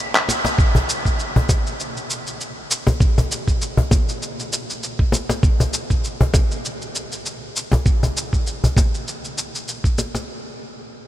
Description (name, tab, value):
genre	downtempo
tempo	99 BPM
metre	4/4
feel	swing 56% on 16ths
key	none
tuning	none
part	dusty soul sampler-style drum kit	drums	0.2-10.3 s	claves, handclaps, hi-hat, shaker	-24 LUFS	equal	none
part	cajon	percussion	0.3-10.3 s	none	-23 LUFS	left 1 dB	none
part	electronic kick drum	drums	0.6-9.9 s	none	-17 LUFS	equal	none
room	light reverb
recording	none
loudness	-18 LUFS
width	side -13 dB against mid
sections	0.6-10.3 A section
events	break 0.0-0.6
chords	none